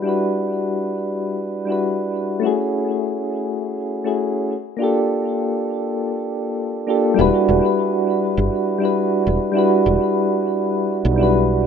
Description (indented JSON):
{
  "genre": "sunset chillout",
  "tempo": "101 BPM",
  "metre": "4/4",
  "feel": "straight",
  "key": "E dorian",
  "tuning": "A4 = 440 Hz",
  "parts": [
    { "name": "soft electric-piano-like synth keys", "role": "accompaniment", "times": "0.0-11.7 s", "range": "G3 to B4", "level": "-18 LUFS", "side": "equal", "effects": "chorus, tremolo, auto-pan, low-pass filter, ping-pong delay" },
    { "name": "woody fretless electric bass", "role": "bass", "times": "7.2-11.7 s", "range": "E1 to B1", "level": "-19 LUFS", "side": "right 1 dB", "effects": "ensemble chorus" }
  ],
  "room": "moderate studio reverb, RT60 0.5 s",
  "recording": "rough home demo mix",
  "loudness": "-18 LUFS",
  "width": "side -7 dB against mid",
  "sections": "0.0-7.2 A section; 7.2-11.7 B section",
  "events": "none",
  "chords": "0.0 Em9; 2.4 F#m9; 4.5 Gm9; 7.2 Em9"
}